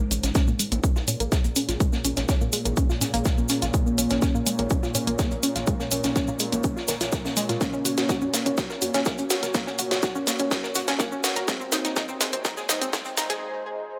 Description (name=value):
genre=melodic techno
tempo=124 BPM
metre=4/4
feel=straight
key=Bb minor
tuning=A4 = 442 Hz
part: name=soft octave-layered synth lead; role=melody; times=0.0-0.7, 3.7-4.6, 7.6-8.5, 11.5-12.4 s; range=Ab3 to Db4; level=-33 LUFS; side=equal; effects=chorus, phaser, sidechain pumping, digital delay
part: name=deep dark ambient pad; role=sustained chords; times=0.0-14.0 s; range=Ab3 to Db5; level=-37 LUFS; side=equal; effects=chorus, built-in reverb, sidechain pumping
part: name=analog pluck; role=arpeggios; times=0.0-13.4 s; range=Ab3 to Bb4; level=-31 LUFS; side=equal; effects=chorus, cassette tape, sidechain pumping, digital delay
part: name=bowed-like drone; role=drone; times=0.6-13.4 s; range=Bb2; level=-40 LUFS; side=equal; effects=built-in reverb, sidechain pumping
part: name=tight sequencer bass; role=bass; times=0.1-13.4 s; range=Gb1 to Bb2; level=-34 LUFS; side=equal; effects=sidechain pumping
part: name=house drum kit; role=drums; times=0.1-13.4 s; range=hi-hat, snare drum, toms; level=-31 LUFS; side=equal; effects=high-pass filter on snare, sidechain pumping on toms, high-pass filter on toms, sidechain pumping on hats, high-pass filter on hats, high-pass filter on room
part: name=warm soul drum kit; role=drums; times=0.1-13.4 s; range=hi-hat, shaker, snare drum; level=-38 LUFS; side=equal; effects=sidechain pumping on hats, high-pass filter on hats, high-pass filter on snare, sidechain pumping on perc, high-pass filter on perc, high-pass filter on room
part: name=cabasa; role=percussion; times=0.1-13.4 s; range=none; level=-33 LUFS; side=equal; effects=none
part: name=electronic kick drum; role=drums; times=0.4-13.0 s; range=none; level=-27 LUFS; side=equal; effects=none
room=moderate concert hall reverb, RT60 2.0 s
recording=high-pass filter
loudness=-25 LUFS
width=mono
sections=0.0-14.0 A section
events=build-up 0.0-14.0; filter sweep on synth pluck 0.0-14.0; filter sweep on soft synth lead 0.0-14.0; filter sweep 0.0-14.0; drum fill 7.6-13.4; break 13.4-14.0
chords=0.0 Bbm7; 7.6 Gb; 11.5 Ab